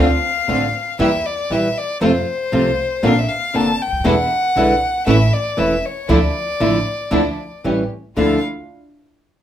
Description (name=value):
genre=tango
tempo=117 BPM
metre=4/4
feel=rubato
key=D minor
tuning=A4 = 440 Hz
part: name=warm violin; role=second line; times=0.0-8.4 s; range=C5 to A5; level=-20 LUFS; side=left 2 dB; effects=none
part: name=flamenco guitar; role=accompaniment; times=0.0-8.4 s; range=B2 to F4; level=-18 LUFS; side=equal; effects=none
part: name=rich symphonic string section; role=stabs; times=0.0-8.4 s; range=F3 to G4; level=-24 LUFS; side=right 1 dB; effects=none
part: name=upright bass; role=bass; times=0.0-8.4 s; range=E1 to F2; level=-22 LUFS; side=right 1 dB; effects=none
room=wet club reverb, RT60 0.5 s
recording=minimal, uncompressed stereo recording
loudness=-15 LUFS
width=side -10 dB against mid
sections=0.0-8.2 A section; 8.2-9.4 B section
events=violin solo 0.0-8.2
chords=0.0 Dm7; 1.0 Edim; 2.0 F; 3.0 Bbadd9; 4.0 E7; 5.1 A; 6.1 Dmadd9; 7.6 A7; 8.2 Dmadd9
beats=0.48 0.99 1.50 | 2.01 2.52 3.03 3.54 | 4.05 4.55 5.06 5.57 | 6.09 6.60 7.12 7.64 | 8.17